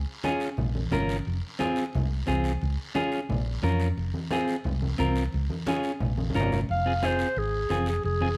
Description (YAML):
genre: latin, cumbia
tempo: 177 BPM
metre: 4/4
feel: straight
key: F minor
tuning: A4 = 440 Hz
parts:
  - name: hollow-body short-scale fingered electric bass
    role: bass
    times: 0.0-8.4 s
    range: F1 to F2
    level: -30 LUFS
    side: equal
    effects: none
  - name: clean electric guitar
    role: accompaniment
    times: 0.2-8.3 s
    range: C4 to Bb4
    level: -31 LUFS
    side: equal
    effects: none
  - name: congas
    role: percussion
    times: 0.2-8.4 s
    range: none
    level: -36 LUFS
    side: equal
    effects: none
  - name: guiro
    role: percussion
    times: 0.2-8.4 s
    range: none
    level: -46 LUFS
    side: equal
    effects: none
  - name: warm clarinet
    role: melody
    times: 6.7-8.4 s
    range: Ab4 to F5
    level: -30 LUFS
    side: equal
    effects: none
room: moderate large studio reverb, RT60 1.2 s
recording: none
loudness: -28 LUFS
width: mono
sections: 0.0-6.7 A section; 6.7-8.4 B section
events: drum fill 6.2-6.7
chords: 0.0 Db; 0.6 Bbm; 1.3 Fm; 2.6 Db; 3.3 Bbm; 4.0 Fm; 5.3 Db; 6.0 Bbm; 6.7 Fm